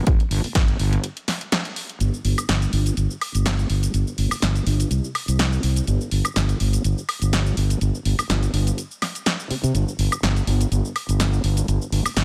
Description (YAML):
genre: filtered disco house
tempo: 124 BPM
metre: 4/4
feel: swing 54% on 16ths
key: unclear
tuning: A4 = 440 Hz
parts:
  - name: fuzz fingered electric bass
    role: bass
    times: 0.1-12.2 s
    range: G1 to C3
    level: -23 LUFS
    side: equal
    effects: overdrive, sidechain pumping, low-pass filter
  - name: electronic kick drum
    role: drums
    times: 0.1-0.7 s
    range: none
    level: -20 LUFS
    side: equal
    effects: none
  - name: house drum kit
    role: drums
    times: 0.1-12.2 s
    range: hi-hat, shaker, snare drum, woodblock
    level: -28 LUFS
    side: equal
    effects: sidechain pumping on hats, sidechain pumping on perc
room: digital ambience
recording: none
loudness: -22 LUFS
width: mono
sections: 0.0-2.0 A section; 2.0-12.2 B section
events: break 1.0-2.0; filter sweep on fingered electric bass 2.0-12.2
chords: none